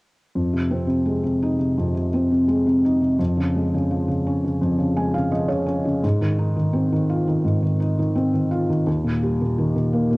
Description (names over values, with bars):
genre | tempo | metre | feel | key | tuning
folk | 85 BPM | 4/4 | straight | F minor | A4 = 440 Hz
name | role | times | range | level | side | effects
felt-muted upright piano | melody | 0.4-10.2 s | Eb2 to Ab5 | -19 LUFS | equal | cassette tape
room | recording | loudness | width
moderate spring reverb, RT60 1.4 s, small room ambience | home recording on cassette | -19 LUFS | side -24 dB against mid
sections
0.4-10.2 A section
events
felt piano fill 4.6-6.0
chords
0.4 Fm7; 3.2 Db/F; 6.0 Ab6; 8.9 Eb